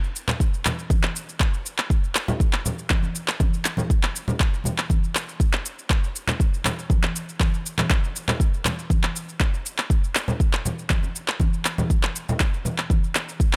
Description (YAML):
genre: house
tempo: 120 BPM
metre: 4/4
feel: straight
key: none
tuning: none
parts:
  - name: electronic shaker and handclaps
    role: drums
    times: 0.0-13.6 s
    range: none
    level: -28 LUFS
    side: equal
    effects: none
  - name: congas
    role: percussion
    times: 0.3-13.0 s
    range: none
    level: -31 LUFS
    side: equal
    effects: none
  - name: electronic kick drum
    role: drums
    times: 0.4-13.5 s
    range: none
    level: -23 LUFS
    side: equal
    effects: none
room: digital ambience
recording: none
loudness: -24 LUFS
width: mono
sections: 0.0-13.6 A section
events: none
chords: none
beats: 0.40 0.90 1.40 | 1.90 2.40 2.90 3.40 | 3.90 4.40 4.90 5.40 | 5.90 6.40 6.90 7.40 | 7.90 8.40 8.90 9.40 | 9.90 10.40 10.90 11.40 | 11.90 12.40 12.90 13.40